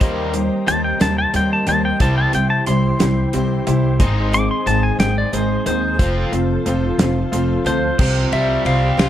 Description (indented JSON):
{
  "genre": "folk rock and heartland rock",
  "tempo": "60 BPM (dotted quarters)",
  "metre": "6/8",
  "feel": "straight",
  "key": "unclear",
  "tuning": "A4 = 440 Hz",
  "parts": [
    { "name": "clear concert grand piano", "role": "accompaniment", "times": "0.0-9.1 s", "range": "Eb4 to A5", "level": "-29 LUFS", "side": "right 2 dB", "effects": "plate reverb" },
    { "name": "picked twelve-string acoustic guitar", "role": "accompaniment", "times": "0.0-9.1 s", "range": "C3 to C5", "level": "-27 LUFS", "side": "left 4 dB", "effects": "plate reverb" },
    { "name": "tonewheel organ", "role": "sustained chords", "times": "0.0-9.1 s", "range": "Eb3 to Bb4", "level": "-30 LUFS", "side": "right 1 dB", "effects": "slow rotary speaker, chorus vibrato, plate reverb" },
    { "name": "crunchy overdriven guitar", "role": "riff", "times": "0.0-9.1 s", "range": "C3 to F4", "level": "-22 LUFS", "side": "equal", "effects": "none" },
    { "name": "upright bass", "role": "bass", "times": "0.0-9.1 s", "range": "F1 to Eb2", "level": "-20 LUFS", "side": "equal", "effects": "none" },
    { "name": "damped 70s drum kit", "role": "drums", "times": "0.0-9.1 s", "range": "crash cymbal, hi-hat, kick drum, ride cymbal, snare drum", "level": "-20 LUFS", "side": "equal", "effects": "none" },
    { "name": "pedal steel guitar", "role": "melody", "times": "0.7-9.1 s", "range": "C5 to D6", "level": "-21 LUFS", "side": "left 1 dB", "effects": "none" }
  ],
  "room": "light reverb",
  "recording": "dark, warm production",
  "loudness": "-15 LUFS",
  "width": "side -11 dB against mid",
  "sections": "0.0-8.0 A section; 8.0-9.1 B section",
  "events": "pedal steel guitar solo 0.0-8.0; grand piano fill 7.0-8.0",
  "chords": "0.0 Eb6; 2.0 C; 4.0 Ab; 6.0 F; 8.0 Csus4"
}